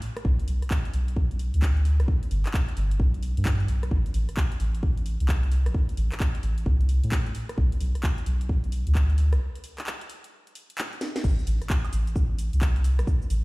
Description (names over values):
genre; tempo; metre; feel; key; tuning
UK garage, two-step garage; 131 BPM; 4/4; swing 64% on 16ths; A minor; A4 = 440 Hz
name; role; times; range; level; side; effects
house drum kit; drums; 0.0-13.4 s; crash cymbal, handclaps, hi-hat, rim click, shaker, snare drum, woodblock; -36 LUFS; equal; none
soft dub sub bass; bass; 0.2-13.4 s; G1 to A2; -24 LUFS; equal; none
electronic kick drum; drums; 0.2-13.2 s; none; -25 LUFS; equal; none
room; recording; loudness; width
digital ambience; played on a big sound system in a bare room, stone room reverb; -23 LUFS; side -23 dB against mid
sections
0.0-11.2 A section; 11.2-13.4 B section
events
break 9.4-11.2; drum fill 11.0; drop 11.2-13.4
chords
none